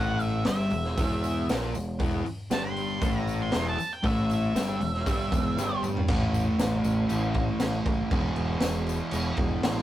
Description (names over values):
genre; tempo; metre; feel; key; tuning
garage rock duo or trio; 118 BPM; 4/4; straight; unclear; A4 = 440 Hz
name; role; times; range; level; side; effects
octave-fuzz lead guitar; melody; 0.0-5.8 s; E5 to C6; -32 LUFS; right 1 dB; distortion
fuzz guitar; riff; 0.0-9.8 s; E2 to Bb3; -29 LUFS; equal; distortion
growling picked electric bass; bass; 0.0-9.8 s; E1 to Bb1; -30 LUFS; equal; overdrive, tube saturation
raw garage drum kit; drums; 0.2-9.8 s; crash cymbal, hi-hat, kick drum, snare drum, toms; -30 LUFS; equal; none
tambourine; percussion; 0.2-9.8 s; none; -46 LUFS; left 4 dB; none
room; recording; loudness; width
light reverb; rough rehearsal-room recording; -25 LUFS; side -13 dB against mid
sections
0.0-6.1 A section; 6.1-9.8 B section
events
drum fill 5.6-6.1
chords
0.0 Emadd11; 6.1 A5; 8.1 E5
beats
0.46 0.97 1.49 | 2.00 2.51 3.02 3.54 | 4.05 4.56 5.07 5.58 | 6.09 6.59 7.10 7.61 | 8.12 8.63 9.13 9.64